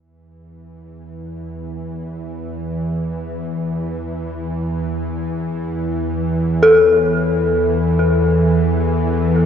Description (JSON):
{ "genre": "dark ambient drone", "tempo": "free time", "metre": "none", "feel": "none", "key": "unclear", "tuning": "A4 = 439 Hz", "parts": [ { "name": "bowed-like drone", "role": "drone", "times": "0.7-9.5 s", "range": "E2 to E3", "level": "-19 LUFS", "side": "right 1 dB", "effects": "built-in reverb" }, { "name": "dark detuned synth bell", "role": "arpeggios", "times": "6.6-9.5 s", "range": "A4", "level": "-15 LUFS", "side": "left 2 dB", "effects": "chorus, analog delay" } ], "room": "wet lush hall reverb, RT60 2.7 s", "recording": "dreamy mix soaked in reverb", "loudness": "-16 LUFS", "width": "side -8 dB against mid", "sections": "0.0-9.5 A section", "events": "fade-in on synth drone 0.0-9.5", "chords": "none", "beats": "free time" }